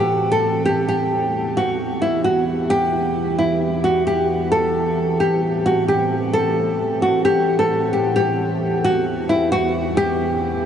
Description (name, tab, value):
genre	hip hop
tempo	132 BPM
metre	4/4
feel	half-time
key	E minor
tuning	A4 = 443 Hz
part	nylon-string guitar	melody	0.0-10.6 s	E4 to A4	-18 LUFS	equal	wide subtle chorus
part	deep dark ambient pad	sustained chords	0.0-10.7 s	E2 to F#5	-23 LUFS	right 1 dB	chorus, built-in reverb
room	wet huge ambient reverb, RT60 7.5 s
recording	dreamy mix soaked in reverb, nothing above 10.8 kHz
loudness	-17 LUFS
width	side -8 dB against mid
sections	0.9-8.2 A section; 8.2-10.7 B section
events	none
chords	0.0 Am7; 0.9 Em; 4.5 Am7; 8.2 Em